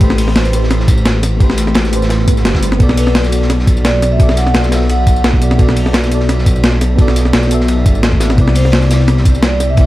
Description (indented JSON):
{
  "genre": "liquid drum and bass",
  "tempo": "172 BPM",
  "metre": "4/4",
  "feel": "swing 54% on 16ths",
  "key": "unclear",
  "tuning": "A4 = 437 Hz",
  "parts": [
    { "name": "mellow FM electric piano", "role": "accompaniment", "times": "0.0-9.9 s", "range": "C3 to F#5", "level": "-18 LUFS", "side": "left 1 dB", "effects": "chorus, tape echo" },
    { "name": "dark detuned saw bass", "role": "bass", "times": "0.0-9.9 s", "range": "F#1 to C2", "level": "-14 LUFS", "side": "equal", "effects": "none" },
    { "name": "breakbeat sampler-style drum kit", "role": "drums", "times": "0.0-9.9 s", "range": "hi-hat, snare drum, tambourine", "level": "-16 LUFS", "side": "equal", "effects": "studio reverb" },
    { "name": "crunchy breakbeat drum kit", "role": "drums", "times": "0.0-9.9 s", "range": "hi-hat, ride cymbal, snare drum", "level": "-24 LUFS", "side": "equal", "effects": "high-pass filter on cymbals, studio reverb, high-pass filter on hats, high-pass filter on snare, high-pass filter on room" },
    { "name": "electronic kick drum", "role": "drums", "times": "0.0-9.9 s", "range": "none", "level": "-11 LUFS", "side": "equal", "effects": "studio reverb" },
    { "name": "swell", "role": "sound effects", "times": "2.2-2.8 s", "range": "none", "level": "-24 LUFS", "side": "right 3 dB", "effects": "none" },
    { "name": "vibraphone with medium hard mallets", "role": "melody", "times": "3.0-5.2, 8.6-9.9 s", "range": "B4 to F#5", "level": "-21 LUFS", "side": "equal", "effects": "tape echo" }
  ],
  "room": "small room ambience",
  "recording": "none",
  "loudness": "-9 LUFS",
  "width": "side -16 dB against mid",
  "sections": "0.0-9.9 A section",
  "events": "swell 2.2-2.8",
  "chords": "0.0 Am9; 2.8 Bm7; 8.4 Cmaj9"
}